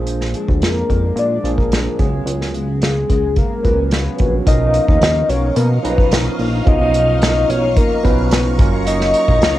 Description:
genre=indie pop, bedroom pop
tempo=109 BPM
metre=4/4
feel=straight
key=unclear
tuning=A4 = 440 Hz
part: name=barky tine electric piano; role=accompaniment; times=0.0-9.6 s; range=E#3 to A#5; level=-24 LUFS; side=right 8 dB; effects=overdrive, cassette tape
part: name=nylon-string guitar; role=accompaniment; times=0.0-9.6 s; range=A#2 to F#4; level=-28 LUFS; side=left 9 dB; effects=analog chorus, warbly pitch drift, cassette tape
part: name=chorused synth bass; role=bass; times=0.0-9.6 s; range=F#1 to B2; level=-18 LUFS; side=equal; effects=none
part: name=unplugged drum kit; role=drums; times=0.1-9.6 s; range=hi-hat, kick drum, snare drum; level=-17 LUFS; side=equal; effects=cassette tape
part: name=soft octave-layered synth lead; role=melody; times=0.6-9.6 s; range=G#4 to D#5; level=-19 LUFS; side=left 2 dB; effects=analog chorus, cassette tape
part: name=phased string machine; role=sustained chords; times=4.5-9.6 s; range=C#5 to C#6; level=-26 LUFS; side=equal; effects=ensemble chorus, phaser, cassette tape
room=light reverb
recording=home recording on cassette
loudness=-13 LUFS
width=side -14 dB against mid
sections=0.0-4.5 A section; 4.5-9.6 B section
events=none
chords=0.0 A#7; 2.0 C#7sus4; 4.5 Bmaj9#11; 8.6 F#maj7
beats=| 0.07 0.62 1.17 1.72 | 2.27 2.82 3.37 3.92 | 4.47 5.02 5.57 6.12 | 6.67 7.22 7.77 8.32 | 8.87 9.41

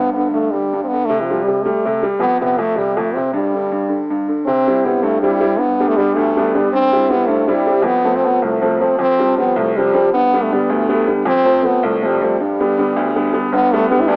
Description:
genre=celtic folk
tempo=106 BPM (dotted quarters)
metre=6/8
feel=straight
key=G mixolydian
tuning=A4 = 445 Hz
part: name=clear French horn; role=melody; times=0.0-14.2 s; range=E3 to E4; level=-16 LUFS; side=equal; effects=none
part: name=clear upright piano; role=accompaniment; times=0.0-14.2 s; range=G1 to E4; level=-16 LUFS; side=equal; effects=cassette tape
room=moderate lush hall reverb, RT60 2.2 s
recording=home recording on cassette, AM radio sound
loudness=-13 LUFS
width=side -36 dB against mid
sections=0.0-4.5 A section; 4.5-13.5 B section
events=none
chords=0.0 G5; 1.1 C5; 2.2 F5; 3.3 G5; 4.5 C; 5.6 G; 6.7 C/G; 7.9 F; 9.0 Fsus2; 10.1 G; 11.3 F; 12.4 G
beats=0.52 | 1.09 1.65 | 2.21 2.78 | 3.34 3.91 | 4.47 5.04 | 5.60 6.16 | 6.73 7.29 | 7.86 8.42 | 8.99 9.55 | 10.12 10.69 | 11.25 11.82 | 12.38 12.95 | 13.51 14.08

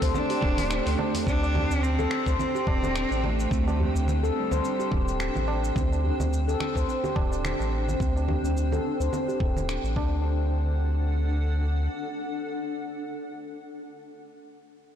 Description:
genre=organic downtempo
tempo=107 BPM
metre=4/4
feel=swing 56% on 16ths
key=unclear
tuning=A4 = 440 Hz
part: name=electric guitar at the edge of break-up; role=accompaniment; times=0.0-1.2 s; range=A3 to C5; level=-32 LUFS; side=right 2 dB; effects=spring reverb, sidechain pumping, ping-pong delay
part: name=granular cloud pad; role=sustained chords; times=0.0-13.2 s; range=D4 to A5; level=-35 LUFS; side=left 2 dB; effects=built-in reverb, sidechain pumping
part: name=handpan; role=arpeggios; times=0.0-10.5 s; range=C4 to C5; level=-30 LUFS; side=equal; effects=low-pass filter, ping-pong delay
part: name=warm sub bass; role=bass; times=0.0-11.9 s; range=D1 to D2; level=-26 LUFS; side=equal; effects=none
part: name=dusty soul sampler-style drum kit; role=drums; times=0.0-9.9 s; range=cabasa, congas, finger snaps, hi-hat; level=-35 LUFS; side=right 2 dB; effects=soft clipping on snare
part: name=electronic kick drum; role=drums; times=0.0-10.1 s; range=none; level=-27 LUFS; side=equal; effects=none
part: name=clear cello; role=melody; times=0.1-5.2 s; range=G3 to D4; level=-31 LUFS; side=equal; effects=vintage 12-bit sampler grit, ping-pong delay
part: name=tabla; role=percussion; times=0.3-10.1 s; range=none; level=-36 LUFS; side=right 1 dB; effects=none
room=moderate lush hall reverb, RT60 3.0 s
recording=blown-out, overdriven recording, overdrive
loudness=-24 LUFS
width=side -9 dB against mid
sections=0.0-1.3 A section; 1.3-10.2 B section; 10.2-12.5 C section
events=filter sweep on handpan 1.3-10.2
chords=0.0 D7sus4; 10.0 D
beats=0.15 0.71 | 1.27 1.83 2.39 2.95 | 3.51 4.07 4.63 5.20 | 5.76 6.32 6.88 7.44 | 8.00 8.56 9.12 9.68 | 10.24 10.80 11.36 11.92

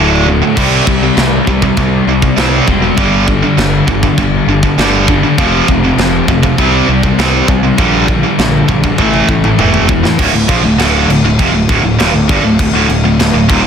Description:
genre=heavy metal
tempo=100 BPM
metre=4/4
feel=straight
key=D minor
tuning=A4 = 435 Hz
part: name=distorted electric guitar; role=riff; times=0.0-10.2 s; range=D2 to C4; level=-16 LUFS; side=left 1 dB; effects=distortion
part: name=heavy high-gain guitar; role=riff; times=0.0-13.7 s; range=D2 to C4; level=-15 LUFS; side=left 9 dB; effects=distortion
part: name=tight distorted guitar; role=riff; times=0.0-13.7 s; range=D2 to C4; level=-14 LUFS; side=right 11 dB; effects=distortion
part: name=fuzz picked electric bass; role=bass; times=0.0-13.7 s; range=D1 to C2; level=-15 LUFS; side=equal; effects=overdrive
part: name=tight metal drum kit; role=drums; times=0.6-13.6 s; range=china cymbal, crash cymbal, kick drum, snare drum, toms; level=-15 LUFS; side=equal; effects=none
room=little or no reverb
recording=dense, heavily limited modern master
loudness=-8 LUFS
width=side -7 dB against mid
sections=0.0-10.2 A section; 10.2-13.7 B section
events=drum fill 9.0-10.2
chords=0.0 D5; 0.6 C5; 3.0 G5; 5.4 F5; 6.6 C5; 7.8 Gm/Bb; 9.0 A5; 10.2 Dm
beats=| 0.56 1.17 1.77 2.37 | 2.97 3.57 4.17 4.78 | 5.38 5.98 6.58 7.18 | 7.78 8.38 8.98 9.58 | 10.18 10.78 11.38 11.99 | 12.59 13.19

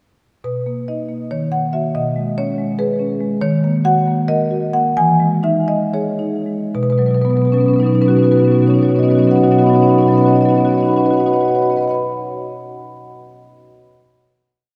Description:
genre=classical, contemporary piece for solo marimba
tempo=216-288 BPM (eighths)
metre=7/8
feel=rubato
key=B major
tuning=A4 = 442 Hz
part: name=marimba with medium mallets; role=solo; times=0.4-12.0 s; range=B2 to B5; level=-16 LUFS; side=equal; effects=none
room=wet church reverb, RT60 3.6 s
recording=dark, warm production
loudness=-16 LUFS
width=mono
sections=0.5-6.7 A section; 6.7-10.5 final chord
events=slowing down 2.7-6.7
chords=0.5 Bmaj7; 1.3 D#m; 1.9 B69; 3.4 D#m7; 5.0 Emaj7; 6.7 Badd9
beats=| 0.45 0.67 0.88 1.10 1.31 1.52 1.74 | 1.95 2.16 2.37 2.58 2.79 3.00 3.21 | 3.42 3.63 3.85 4.07 4.29 4.51 4.74 | 4.97 5.21 5.45 5.69 5.94 6.20 6.47 | 6.75 7.02 7.29 7.57 7.84 8.11 8.37 | 8.64 8.91 9.18 9.45 9.72 9.99 10.26

